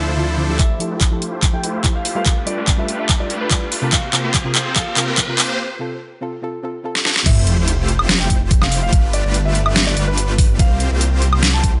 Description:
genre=future bass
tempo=144 BPM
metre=4/4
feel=half-time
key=F major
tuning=A4 = 440 Hz
part: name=soft round pluck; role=accompaniment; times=0.0-7.2 s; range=C3 to D5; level=-28 LUFS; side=equal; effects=chorus, sidechain pumping, delay
part: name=concert harp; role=arpeggios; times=0.0-3.3 s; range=D4 to E5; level=-36 LUFS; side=equal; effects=sidechain pumping, delay
part: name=supersaw chords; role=riff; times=0.0-11.8 s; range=F3 to C5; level=-27 LUFS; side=equal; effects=sidechain pumping, low-pass filter, delay
part: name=detuned saw bass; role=bass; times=0.0-0.6, 7.3-11.8 s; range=F1 to D2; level=-21 LUFS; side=equal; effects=chorus, sidechain pumping
part: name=swell, riser and sub drop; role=sound effects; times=0.0-8.9 s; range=none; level=-27 LUFS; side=equal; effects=none
part: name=warm concert grand piano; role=melody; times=0.6-11.7 s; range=B4 to A5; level=-30 LUFS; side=equal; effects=sidechain pumping, tape echo
part: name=dubstep drum kit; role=drums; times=0.6-11.7 s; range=crash cymbal, handclaps, hi-hat, ride cymbal, snare drum, woodblock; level=-21 LUFS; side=equal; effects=overdrive
part: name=electronic kick drum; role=drums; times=0.6-11.7 s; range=none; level=-18 LUFS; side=equal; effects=overdrive
room=digital ambience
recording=high-pass filter, nothing above 11.0 kHz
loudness=-17 LUFS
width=mono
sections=0.6-7.3 A section; 7.3-11.8 B section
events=build-up 0.6-7.3; drum fill 0.6-5.6, 6.9-7.3; filter sweep on supersaw synth 0.6-7.3; filter sweep 0.6-7.3; riser 2.7-5.6; break 5.6-7.3; drop 7.3-11.8; impact 7.3-8.9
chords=0.0 Dm9; 0.6 Fmaj9; 2.3 G9; 3.9 C7sus4; 5.4 F/C; 7.3 Fmaj9; 8.9 G9; 10.6 C7sus4

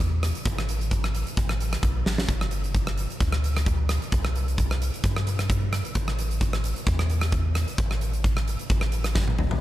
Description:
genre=calypso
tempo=131 BPM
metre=4/4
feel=swing 54% on 16ths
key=unclear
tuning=A4 = 437 Hz
part: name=pure sine sub bass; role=bass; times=0.0-9.5 s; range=G1 to G2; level=-26 LUFS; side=equal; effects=none
part: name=huge arena drum kit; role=drums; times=0.0-9.6 s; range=hi-hat, kick drum, rim click, snare drum, toms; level=-26 LUFS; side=equal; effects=none
room=little or no reverb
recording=none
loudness=-23 LUFS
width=side -14 dB against mid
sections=0.0-9.6 A section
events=drum fill 2.1, 9.2-9.6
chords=none

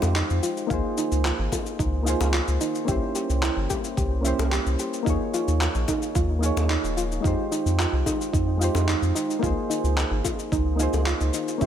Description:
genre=sunset chillout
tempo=110 BPM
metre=4/4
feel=straight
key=unclear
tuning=A4 = 442 Hz
part: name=soft electric-piano-like synth keys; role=accompaniment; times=0.0-11.7 s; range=Ab3 to Db5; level=-28 LUFS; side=moving between left 5 dB and right 5 dB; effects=chorus, auto-pan, digital delay
part: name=round analog bass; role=bass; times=0.0-11.7 s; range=Eb1 to F2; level=-24 LUFS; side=equal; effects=none
part: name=electronic shaker and handclaps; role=drums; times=0.0-11.7 s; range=none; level=-31 LUFS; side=left 2 dB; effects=overdrive
part: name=bongos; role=percussion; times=0.0-11.0 s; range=none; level=-34 LUFS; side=left 5 dB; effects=none
part: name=soft round pluck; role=arpeggios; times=0.2-11.7 s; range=Eb4 to G4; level=-29 LUFS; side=right 3 dB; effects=chorus, vintage 12-bit sampler grit, digital delay
part: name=electronic kick drum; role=drums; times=0.7-11.7 s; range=none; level=-29 LUFS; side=equal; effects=overdrive
room=light reverb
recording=none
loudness=-22 LUFS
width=side -9 dB against mid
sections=0.0-11.7 A section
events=none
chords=0.0 Fm9; 0.7 Dbmaj13; 2.9 C7b9; 5.1 Eb9sus4; 7.2 Fm9; 9.4 Dbmaj13

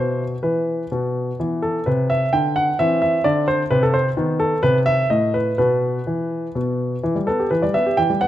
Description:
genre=classical-period piano sonatina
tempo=127 BPM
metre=3/4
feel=straight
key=E minor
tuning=A4 = 443 Hz
part: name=clear grand piano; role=solo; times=0.0-8.3 s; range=A2 to G5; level=-17 LUFS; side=equal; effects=none
room=moderate recital hall reverb, RT60 1.8 s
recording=close, detailed microphones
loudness=-17 LUFS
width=side -12 dB against mid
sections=0.0-7.0 A section; 7.0-8.3 A section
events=none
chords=0.0 E5/B; 0.9 N.C.; 1.4 E5; 2.8 Cadd9; 4.2 B7; 5.6 E5/B; 6.6 N.C.; 7.0 Em

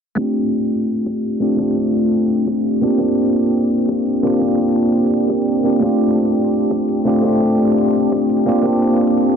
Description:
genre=liquid drum and bass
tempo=170 BPM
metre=4/4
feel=straight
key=G minor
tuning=A4 = 441 Hz
part: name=bell-like tine electric piano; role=accompaniment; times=0.2-9.4 s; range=A3 to G4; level=-14 LUFS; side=equal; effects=wide subtle chorus, low-pass filter, ping-pong delay
part: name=electronic hi-hat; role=drums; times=0.2-9.3 s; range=none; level=-56 LUFS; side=right 3 dB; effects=none
part: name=electronic kick drum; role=drums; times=0.2-8.7 s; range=none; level=-27 LUFS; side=equal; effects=high-pass filter on kick, high-pass filter on room
room=wet huge ambient reverb, RT60 8.2 s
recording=dreamy mix soaked in reverb, low-pass filter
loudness=-14 LUFS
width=side -7 dB against mid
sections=0.2-9.4 A section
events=filter sweep on tine electric piano 0.2-9.4; filter sweep 0.2-9.4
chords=0.2 G9sus4; 2.8 C9sus4; 5.8 G9sus4; 8.5 C9sus4

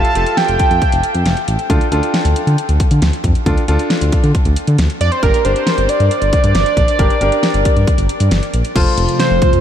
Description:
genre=synth-pop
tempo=136 BPM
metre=4/4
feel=straight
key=D minor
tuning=A4 = 441 Hz
part: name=fat analog lead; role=melody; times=0.0-1.5, 5.0-9.6 s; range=Bb4 to A5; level=-18 LUFS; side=right 2 dB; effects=phaser, ping-pong delay
part: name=clear grand piano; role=accompaniment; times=0.0-9.4 s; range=D4 to C5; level=-21 LUFS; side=left 2 dB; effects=none
part: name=smooth synth bass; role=bass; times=0.0-9.6 s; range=F1 to D3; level=-15 LUFS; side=equal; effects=none
part: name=pop drum kit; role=drums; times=0.0-9.6 s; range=crash cymbal, hi-hat, kick drum, snare drum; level=-17 LUFS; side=equal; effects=none
part: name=sweeping resonant pad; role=sustained chords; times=8.8-9.6 s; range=C3 to F4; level=-18 LUFS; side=left 2 dB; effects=chorus
room=moderate huge ambient reverb, RT60 8.2 s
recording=dreamy mix soaked in reverb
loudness=-12 LUFS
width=side -9 dB against mid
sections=0.0-8.8 A section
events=none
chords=0.0 Fadd9; 1.7 Dm; 5.2 Gm; 8.8 F

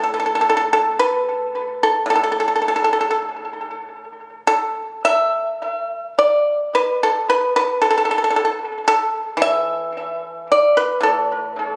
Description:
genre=chinese traditional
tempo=50-57 BPM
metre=2/4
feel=rubato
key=unclear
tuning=A4 = 442 Hz
part: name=pipa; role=solo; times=0.0-11.8 s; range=A2 to E5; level=-19 LUFS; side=equal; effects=tape echo
room=moderate scoring stage reverb, RT60 1.5 s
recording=recorded on a phone in the room, studio reverb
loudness=-19 LUFS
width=mono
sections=0.0-4.4 A section; 4.4-11.8 B section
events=none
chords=none

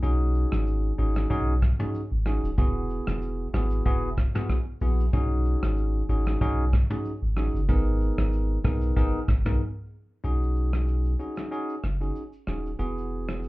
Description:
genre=afrobeats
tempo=94 BPM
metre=4/4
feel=swing 55% on 16ths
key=B major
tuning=A4 = 443 Hz
part: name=bell-like tine electric piano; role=accompaniment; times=0.0-13.5 s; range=B3 to A#4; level=-31 LUFS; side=equal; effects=auto-pan, plate reverb
part: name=punchy sub bass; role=bass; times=0.0-13.5 s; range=D#1 to B1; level=-25 LUFS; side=equal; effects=none
part: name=soft brush drum kit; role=drums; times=0.0-13.5 s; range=hi-hat, kick drum, rim click, shaker, toms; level=-27 LUFS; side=equal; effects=none
room=little or no reverb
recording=heard muffled through a wall, club reverb, EQ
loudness=-24 LUFS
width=side -19 dB against mid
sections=0.0-10.2 A section; 10.2-13.5 B section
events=break 0.0-0.7, 9.6-10.2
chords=0.0 B6; 2.6 Eadd9; 5.1 B6; 7.7 G#madd9; 10.2 B6; 12.8 Eadd9

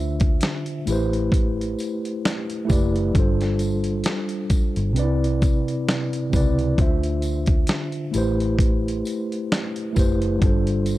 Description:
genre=lo-fi hip hop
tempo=66 BPM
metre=4/4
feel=swing 56% on 16ths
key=unclear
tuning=A4 = 439 Hz
part: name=mellow tine electric piano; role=accompaniment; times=0.0-11.0 s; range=C3 to E5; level=-24 LUFS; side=equal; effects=medium stereo tremolo, cassette tape, low-pass filter
part: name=vintage muted fingered electric bass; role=bass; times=0.0-11.0 s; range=F#1 to D2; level=-24 LUFS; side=equal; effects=none
part: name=dusty soul sampler-style drum kit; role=drums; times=0.2-11.0 s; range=hi-hat, kick drum, snare drum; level=-21 LUFS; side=equal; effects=none
part: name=tambourine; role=percussion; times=0.9-11.0 s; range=none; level=-42 LUFS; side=left 4 dB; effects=none
room=little or no reverb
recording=none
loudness=-20 LUFS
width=side -16 dB against mid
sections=0.0-11.0 A section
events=none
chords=0.0 Dm7; 0.9 Am7; 3.1 G7sus4; 5.0 Cmaj7; 6.8 Dm7; 8.1 Am7; 10.4 G7sus4

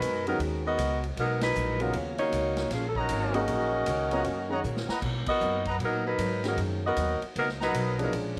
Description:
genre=jazz, big band swing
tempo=155 BPM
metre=4/4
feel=swing 64% on 8ths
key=unclear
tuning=A4 = 441 Hz
part: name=mellow saxophone section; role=melody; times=0.0-8.1 s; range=F3 to Eb5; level=-31 LUFS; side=equal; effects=none
part: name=picked steel-string acoustic guitar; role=accompaniment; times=0.0-8.4 s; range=Bb2 to Bb4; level=-42 LUFS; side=equal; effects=none
part: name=upright bass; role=bass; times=0.0-8.4 s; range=Ab1 to B2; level=-36 LUFS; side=equal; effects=none
part: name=swinging big-band drum kit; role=drums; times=0.0-8.4 s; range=crash cymbal, hi-hat, kick drum, ride cymbal, snare drum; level=-41 LUFS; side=equal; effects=none
part: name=warm upright piano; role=accompaniment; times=0.3-8.4 s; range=Db3 to Ab4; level=-36 LUFS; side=equal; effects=none
part: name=warm trumpet section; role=stabs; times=3.0-8.1 s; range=B3 to Bb5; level=-37 LUFS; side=equal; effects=none
room=light reverb, small room ambience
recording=none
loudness=-29 LUFS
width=mono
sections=0.0-8.4 A section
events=band accent 1.4, 5.2; drum fill 4.6-5.0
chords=0.0 Abm9; 1.9 Ebm7; 5.0 Bmaj7

